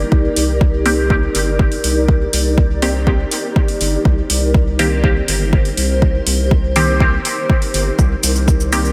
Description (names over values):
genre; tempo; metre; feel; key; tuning
dub techno; 122 BPM; 4/4; straight; C minor; A4 = 444 Hz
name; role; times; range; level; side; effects
granular cloud pad; sustained chords; 0.0-8.9 s; Eb4 to D5; -24 LUFS; equal; built-in reverb, lush chorus, sidechain pumping
round analog bass; bass; 0.0-8.9 s; G1 to C2; -21 LUFS; equal; sidechain pumping
electronic kick drum; drums; 0.1-8.6 s; none; -17 LUFS; equal; overdrive
electronic hi-hat and shaker; drums; 0.4-8.9 s; none; -23 LUFS; equal; overdrive
filtered dub chord stab; stabs; 0.9-8.9 s; Eb3 to G4; -24 LUFS; equal; phaser, sidechain pumping, dub echo
room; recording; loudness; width
moderate huge ambient reverb, RT60 7.7 s; dreamy mix soaked in reverb; -15 LUFS; mono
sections
0.0-8.9 A section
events
none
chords
0.0 Cm7